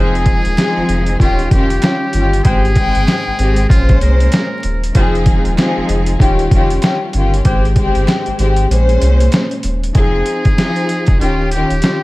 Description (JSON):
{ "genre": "hip hop, boom-bap hip-hop", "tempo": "96 BPM", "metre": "4/4", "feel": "swing 62% on 16ths", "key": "F minor", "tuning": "A4 = 436 Hz", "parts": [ { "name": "trumpet with metal mute", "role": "melody", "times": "0.0-4.9, 10.0-12.0 s", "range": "F4 to Bb4", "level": "-23 LUFS", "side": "right 1 dB", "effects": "high-pass filter, low-pass filter, tape echo" }, { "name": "warm studio string section", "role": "accompaniment", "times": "0.0-12.0 s", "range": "Ab2 to G5", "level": "-17 LUFS", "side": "left 1 dB", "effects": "high-pass filter, low-pass filter" }, { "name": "dark analog pad", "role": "sustained chords", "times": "0.0-9.9 s", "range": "Bb2 to G5", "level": "-27 LUFS", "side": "equal", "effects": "chorus, high-pass filter, low-pass filter" }, { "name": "clear saxophone section", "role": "stabs", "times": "0.0-7.7 s", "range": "Ab3 to G5", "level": "-28 LUFS", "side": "right 1 dB", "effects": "high-pass filter, low-pass filter, tape echo" }, { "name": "soft dub sub bass", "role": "bass", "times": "0.0-11.8 s", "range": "Eb1 to C2", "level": "-15 LUFS", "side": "equal", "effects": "none" }, { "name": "boom bap sampler-style drum kit", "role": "drums", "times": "0.2-12.0 s", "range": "hi-hat, kick drum, snare drum", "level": "-14 LUFS", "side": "equal", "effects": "overdrive" }, { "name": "finger snaps", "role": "percussion", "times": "0.6-9.5 s", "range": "none", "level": "-33 LUFS", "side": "right 5 dB", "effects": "none" } ], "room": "small room ambience", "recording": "dark, warm production, vinyl crackle", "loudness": "-11 LUFS", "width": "side -19 dB against mid", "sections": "0.0-10.0 A section; 10.0-12.0 B section", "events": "kick muted 8.7-10.0", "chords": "0.0 Fm7; 1.2 Eb9; 2.5 Abmaj7; 3.7 Bbm9; 5.0 Fm7; 6.2 Eb9; 7.5 Abmaj7; 8.7 Bbm9; 10.0 Fm7; 11.2 Eb9" }